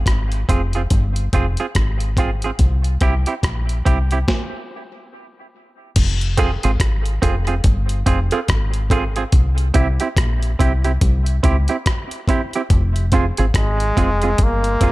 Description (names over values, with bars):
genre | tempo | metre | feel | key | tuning
dub reggae | 71 BPM | 4/4 | swing 61% on 16ths | F harmonic minor | A4 = 440 Hz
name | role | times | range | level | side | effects
deep dub fingered electric bass | bass | 0.0-14.9 s | F1 to Db2 | -19 LUFS | equal | none
breakbeat sampler-style drum kit | drums | 0.1-14.9 s | crash cymbal, hi-hat, kick drum, rim click, snare drum | -18 LUFS | equal | none
semi-hollow electric guitar | accompaniment | 0.5-14.9 s | C4 to Ab4 | -24 LUFS | right 5 dB | warbly pitch drift, dub echo
cowbell | percussion | 6.4-9.1 s | none | -29 LUFS | right 5 dB | dub echo
brilliant trombone | melody | 13.6-14.9 s | Ab3 to Bb3 | -20 LUFS | equal | dub echo
room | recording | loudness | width
digital ambience | none | -16 LUFS | side -19 dB against mid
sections
0.0-6.0 A section; 6.0-14.9 B section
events
stop 4.3-6.0; part muted 9.3-14.9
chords
0.0 Fm; 2.6 N.C.; 6.0 Fm; 9.3 C; 12.7 Fm